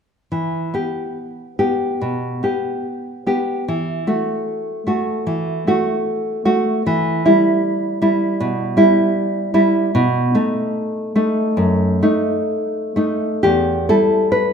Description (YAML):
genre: romantic piece for solo classical guitar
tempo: 58-81 BPM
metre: 4/4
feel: rubato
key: E minor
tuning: A4 = 440 Hz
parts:
  - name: nylon-string guitar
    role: solo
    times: 0.3-14.5 s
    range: E2 to B4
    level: -16 LUFS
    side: equal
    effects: none
room: wet recital hall reverb, RT60 1.6 s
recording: minimal, uncompressed stereo recording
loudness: -16 LUFS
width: side -6 dB against mid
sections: 0.3-13.4 A section; 13.4-14.5 B section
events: none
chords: 0.3 Em; 3.7 Esus24; 6.9 Em; 9.9 B7 (rootless); 13.4 Em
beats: | 0.33 1.18 2.03 2.85 | 3.68 4.49 5.27 6.07 | 6.86 7.64 8.39 9.15 | 9.94 10.75 11.57 12.48 | 13.45 14.33